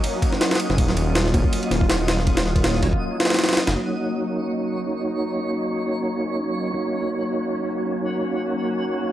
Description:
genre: drum and bass, jungle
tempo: 161 BPM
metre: 4/4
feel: swing 55% on 16ths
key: Eb minor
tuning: A4 = 440 Hz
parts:
  - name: lush unison pad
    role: sustained chords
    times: 0.0-9.1 s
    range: Gb3 to F4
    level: -28 LUFS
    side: equal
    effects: chorus, phaser
  - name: jungle sampler-style drum kit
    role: drums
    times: 0.0-3.8 s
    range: kick drum, ride cymbal, snare drum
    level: -20 LUFS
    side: equal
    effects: overdrive
  - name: twinkling granular texture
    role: texture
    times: 0.0-9.1 s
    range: Gb3 to Eb5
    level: -32 LUFS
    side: equal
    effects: built-in reverb
  - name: detuned saw bass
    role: bass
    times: 0.7-3.8 s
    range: Eb1 to Gb1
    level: -22 LUFS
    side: equal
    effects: none
  - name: mellow tonewheel organ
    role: stabs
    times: 1.3-9.1 s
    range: Bb3 to Db5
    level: -25 LUFS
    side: right 1 dB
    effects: chorus vibrato, fast rotary speaker, low-pass filter, dub echo
room: light reverb, digital ambience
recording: dry, gritty hardware recording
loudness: -20 LUFS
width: side -12 dB against mid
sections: 0.0-3.8 A section; 3.8-9.1 B section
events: filter sweep on tonewheel organ 3.8-9.1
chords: 0.0 Ebm7

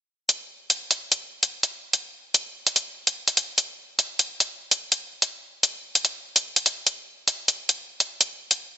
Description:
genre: hip hop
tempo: 146 BPM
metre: 4/4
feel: half-time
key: none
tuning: none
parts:
  - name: electronic hi-hat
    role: drums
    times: 0.3-8.6 s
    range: none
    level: -21 LUFS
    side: equal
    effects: none
room: light reverb, digital ambience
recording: nothing above 7.9 kHz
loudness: -22 LUFS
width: side -9 dB against mid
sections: 0.3-8.8 A section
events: kick muted 0.3-6.9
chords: none

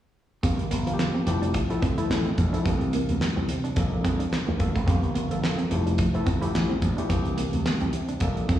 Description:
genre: early-eighties boogie funk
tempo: 108 BPM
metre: 4/4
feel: swing 56% on 16ths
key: unclear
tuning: A4 = 439 Hz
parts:
  - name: tine electric piano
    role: accompaniment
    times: 0.4-8.6 s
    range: E3 to A4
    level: -29 LUFS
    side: left 2 dB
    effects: overdrive, slapback echo
  - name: clean electric guitar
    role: riff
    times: 0.4-8.6 s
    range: A3 to E4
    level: -33 LUFS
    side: right 4 dB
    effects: lush chorus, slapback echo
  - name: slap bass with an envelope filter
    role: bass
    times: 0.4-8.6 s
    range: F1 to C3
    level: -26 LUFS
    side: equal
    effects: none
  - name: damped 70s drum kit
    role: drums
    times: 0.4-8.6 s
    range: handclaps, hi-hat, kick drum, snare drum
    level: -28 LUFS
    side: equal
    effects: none
room: light reverb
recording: live gig heard through the venue's PA, recital hall reverb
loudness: -23 LUFS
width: side -12 dB against mid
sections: 0.4-8.6 A section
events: none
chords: 0.4 Gm7; 1.3 Fmaj9; 2.7 C7; 3.8 Bbmaj7; 4.9 Gm7; 5.7 Fmaj9; 7.1 C7

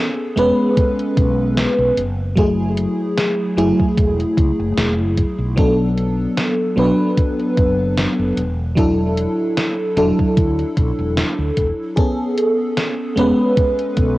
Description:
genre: vaporwave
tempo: 75 BPM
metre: 4/4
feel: swing 55% on 16ths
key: B dorian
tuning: A4 = 440 Hz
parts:
  - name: FM electric piano with soft pad layer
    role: accompaniment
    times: 0.0-14.2 s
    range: F#3 to B4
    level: -17 LUFS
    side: equal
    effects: wide subtle chorus, cassette tape, tape echo
  - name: mellow fretless electric bass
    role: bass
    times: 0.4-14.2 s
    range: E1 to D2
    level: -22 LUFS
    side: equal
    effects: none
  - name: gated 80s digital drum machine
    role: drums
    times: 0.4-14.1 s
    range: hi-hat, snare drum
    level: -23 LUFS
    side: equal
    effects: gated reverb, gated reverb snare, overdrive
  - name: electronic kick drum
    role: drums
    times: 0.8-14.2 s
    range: none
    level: -17 LUFS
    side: equal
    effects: overdrive
room: light reverb, digital ambience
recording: home recording on cassette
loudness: -15 LUFS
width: side -18 dB against mid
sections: 0.0-14.2 A section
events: none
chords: 0.0 Amaj9/E; 2.0 F#m9; 5.6 Bm7; 8.4 E9sus4; 12.0 Amaj9

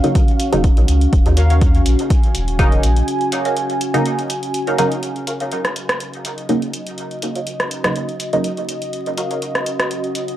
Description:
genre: dub techno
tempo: 123 BPM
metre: 4/4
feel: swing 54% on 16ths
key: Eb minor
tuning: A4 = 440 Hz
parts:
  - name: deep dark ambient pad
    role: sustained chords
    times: 0.0-10.4 s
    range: Db4 to Ab5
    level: -23 LUFS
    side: right 1 dB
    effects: chorus, built-in reverb, sidechain pumping
  - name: filtered dub chord stab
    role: stabs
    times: 0.0-8.5 s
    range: Db3 to Eb4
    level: -21 LUFS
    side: right 1 dB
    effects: chorus, phaser, sidechain pumping, dub echo
  - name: punchy analog drum machine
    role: drums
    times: 0.0-10.4 s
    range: hi-hat, rim click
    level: -24 LUFS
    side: equal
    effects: none
  - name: electronic kick drum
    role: drums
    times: 0.2-2.7 s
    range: none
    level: -15 LUFS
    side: equal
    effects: none
  - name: soft dub sub bass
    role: bass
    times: 0.5-3.0 s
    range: Eb1 to Eb2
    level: -15 LUFS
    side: equal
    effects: sidechain pumping
  - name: filtered dub chord stab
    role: riff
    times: 1.4-9.4 s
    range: Gb4 to F5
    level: -28 LUFS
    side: right 1 dB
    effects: phaser, lush chorus, sidechain pumping, dub echo
room: little or no reverb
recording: dry, gritty hardware recording, vinyl crackle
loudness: -15 LUFS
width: side -13 dB against mid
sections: 0.0-5.0 A section; 5.0-10.4 B section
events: filter sweep on synth stab 0.0-5.0; break 3.1-5.0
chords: 0.0 Ebm7

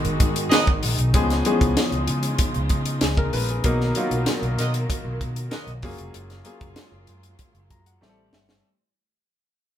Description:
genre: polished 1980s jazz-funk pop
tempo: 96 BPM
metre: 4/4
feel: straight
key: unclear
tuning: A4 = 440 Hz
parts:
  - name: warm concert grand piano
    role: accompaniment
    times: 0.0-8.7 s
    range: E3 to A#5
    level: -26 LUFS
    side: left 2 dB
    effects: none
  - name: warm studio string section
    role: sustained chords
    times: 0.0-8.6 s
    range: C#3 to A#4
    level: -31 LUFS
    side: right 1 dB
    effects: none
  - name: fingered electric bass with an envelope filter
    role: bass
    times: 0.0-8.6 s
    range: E#1 to C#3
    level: -26 LUFS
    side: equal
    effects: none
  - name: tight funk drum kit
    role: drums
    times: 0.0-8.6 s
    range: hi-hat, kick drum, snare drum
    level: -23 LUFS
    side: equal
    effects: none
  - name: mellow horn section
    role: second line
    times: 0.5-0.7, 4.6-5.7 s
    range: B3 to D#5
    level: -24 LUFS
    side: right 4 dB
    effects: none
room: moderate studio reverb, RT60 0.5 s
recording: band playing live in one room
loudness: -20 LUFS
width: side -10 dB against mid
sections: 0.0-8.6 A section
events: fade-out 0.0-8.6; grand piano fill 7.4-8.6; drum fill 8.0-8.6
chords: 0.0 G#m7; 1.1 C#7; 3.6 Bmaj7; 5.8 F#maj9; 8.0 Am7

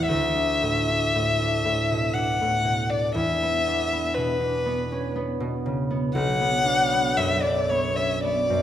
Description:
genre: classical, impressionist duo for violin and harp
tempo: 56-61 BPM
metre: 3/4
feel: rubato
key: D major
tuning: A4 = 440 Hz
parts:
  - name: warm violin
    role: melody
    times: 0.0-8.6 s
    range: B4 to F#5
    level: -23 LUFS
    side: left 2 dB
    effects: none
  - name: concert harp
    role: accompaniment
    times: 0.0-8.6 s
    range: A1 to A5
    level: -25 LUFS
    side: right 1 dB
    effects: none
room: wet recital hall reverb, RT60 1.4 s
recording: none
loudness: -21 LUFS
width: side -10 dB against mid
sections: 0.1-8.6 A section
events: none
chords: 0.1 D6; 3.1 E5; 6.1 Bmadd9

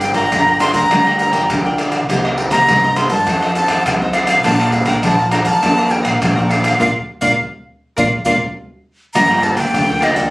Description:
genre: samba and choro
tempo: 102 BPM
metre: 4/4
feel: straight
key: Bb major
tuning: A4 = 441 Hz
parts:
  - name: breathy jazz flute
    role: melody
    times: 0.0-10.3 s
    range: D5 to C6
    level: -15 LUFS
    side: equal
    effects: slapback echo
  - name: cavaquinho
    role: accompaniment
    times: 0.0-10.3 s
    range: Eb4 to Bb5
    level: -24 LUFS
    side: equal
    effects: none
  - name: nylon-string guitar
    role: accompaniment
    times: 0.0-10.3 s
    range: G2 to Bb4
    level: -20 LUFS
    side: equal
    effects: none
  - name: upright bass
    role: bass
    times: 0.0-10.3 s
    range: G1 to G2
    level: -24 LUFS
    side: equal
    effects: none
  - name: maracas, pandeiro, tamborim and surdo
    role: percussion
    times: 0.0-10.3 s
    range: none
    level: -18 LUFS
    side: equal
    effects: none
room: moderate booth ambience, RT60 0.3 s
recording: recorded on a phone in the room, studio reverb, compression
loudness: -12 LUFS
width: side -21 dB against mid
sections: 0.0-9.2 A section; 9.2-10.3 B section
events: band accent 6.8-9.2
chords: 0.0 Gm7; 2.1 Cm7; 3.3 F7; 4.4 Bbmaj7; 9.2 Gm9

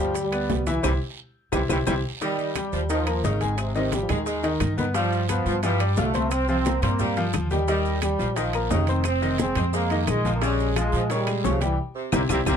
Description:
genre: latin, salsa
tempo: 176 BPM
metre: 4/4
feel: straight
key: unclear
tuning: A4 = 440 Hz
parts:
  - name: bright trombone section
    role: melody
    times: 0.0-12.6 s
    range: C3 to C4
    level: -28 LUFS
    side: right 2 dB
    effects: none
  - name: bright concert grand piano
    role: accompaniment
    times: 0.0-12.6 s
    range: Db3 to F6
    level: -27 LUFS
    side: left 3 dB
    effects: none
  - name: upright bass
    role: bass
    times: 0.0-12.6 s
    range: F1 to Bb2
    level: -26 LUFS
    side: equal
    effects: none
  - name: bongos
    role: percussion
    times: 0.1-12.5 s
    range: none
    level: -33 LUFS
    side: left 9 dB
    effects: none
  - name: congas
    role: percussion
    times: 0.2-12.5 s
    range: none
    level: -32 LUFS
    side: equal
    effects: none
  - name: guiro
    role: percussion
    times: 0.2-12.6 s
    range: none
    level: -42 LUFS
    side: right 7 dB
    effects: none
  - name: maracas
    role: percussion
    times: 0.2-12.5 s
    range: none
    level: -41 LUFS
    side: right 9 dB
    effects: none
  - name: timbales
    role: percussion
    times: 0.2-12.5 s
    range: none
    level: -32 LUFS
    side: right 8 dB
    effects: none
  - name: claves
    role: percussion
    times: 0.3-12.5 s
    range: none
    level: -36 LUFS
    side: left 6 dB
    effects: none
  - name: warm saxophone section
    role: second line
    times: 2.2-12.6 s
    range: C3 to Ab3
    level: -30 LUFS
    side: right 1 dB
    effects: none
room: light reverb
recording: dark, warm production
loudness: -22 LUFS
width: side -8 dB against mid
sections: 0.0-2.2 A section; 2.2-12.6 B section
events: drum fill 0.8-2.2, 11.8-12.6; band accent 0.8-2.2, 11.8-12.6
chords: 0.0 G; 0.8 C; 2.2 Eb; 3.6 Abmaj7; 5.0 G7; 6.3 C7sus4; 7.7 Eb; 9.1 Fm7; 10.4 Bbm7; 11.8 C7

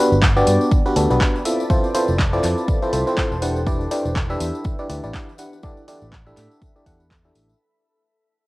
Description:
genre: piano house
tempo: 122 BPM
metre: 4/4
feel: swing 57% on 16ths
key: unclear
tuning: A4 = 440 Hz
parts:
  - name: barking FM electric piano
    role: riff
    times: 0.0-7.5 s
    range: B3 to F#5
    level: -20 LUFS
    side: equal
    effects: chorus, sidechain pumping, low-pass filter, cassette tape
  - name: granular cloud pad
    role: texture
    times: 0.7-7.6 s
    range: E4 to B5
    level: -30 LUFS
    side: equal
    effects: built-in reverb, sidechain pumping, cassette tape
  - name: fingered electric bass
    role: bass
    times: 0.1-7.5 s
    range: E1 to A2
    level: -22 LUFS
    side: equal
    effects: sidechain pumping
  - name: tambourine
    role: percussion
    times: 0.1-7.6 s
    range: none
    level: -39 LUFS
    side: left 6 dB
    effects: none
  - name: electronic kick drum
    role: drums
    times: 0.2-7.2 s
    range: none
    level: -20 LUFS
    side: equal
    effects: cassette tape
  - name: house drum kit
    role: drums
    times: 0.2-7.5 s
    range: handclaps, hi-hat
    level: -26 LUFS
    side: equal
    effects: overdrive, cassette tape
room: moderate booth ambience, RT60 0.2 s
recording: home recording on cassette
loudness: -17 LUFS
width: side -20 dB against mid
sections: 0.0-7.6 A section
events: fade-out 0.0-7.6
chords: 0.0 Gmaj7; 1.5 Fmaj7; 3.4 Em7; 5.6 A7sus4

